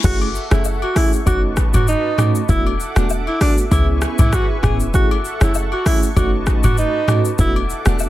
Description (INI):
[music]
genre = afrobeats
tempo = 98 BPM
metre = 4/4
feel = swing 55% on 16ths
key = F# minor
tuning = A4 = 440 Hz
[part]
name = warm alto saxophone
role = melody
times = 0.0-8.0 s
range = D4 to G#4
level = -22 LUFS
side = right 1 dB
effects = tape echo
[part]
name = FM electric piano with tremolo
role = accompaniment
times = 0.0-8.1 s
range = A3 to G#4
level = -24 LUFS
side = right 2 dB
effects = phaser
[part]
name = warm analog pad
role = sustained chords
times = 0.0-8.1 s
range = A4 to D6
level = -30 LUFS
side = right 2 dB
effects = chorus
[part]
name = short 808-style bass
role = bass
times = 0.0-8.1 s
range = E1 to C#2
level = -18 LUFS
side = equal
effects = none
[part]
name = afro-pop drum kit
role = drums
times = 0.0-8.1 s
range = crash cymbal, hi-hat, kick drum, rim click, shaker, toms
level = -18 LUFS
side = equal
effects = soft clipping on snare
[part]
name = agogo bells and woodblock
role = percussion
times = 0.2-8.1 s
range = none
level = -29 LUFS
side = left 8 dB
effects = none
[sound]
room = little or no reverb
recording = dense, heavily limited modern master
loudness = -14 LUFS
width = side -15 dB against mid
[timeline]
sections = 0.0-8.1 A section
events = none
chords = 0.0 F#m7; 1.3 B9/F#; 2.5 E9sus4; 3.7 C#m7; 4.9 F#m7; 6.2 B9/F#; 7.4 E9sus4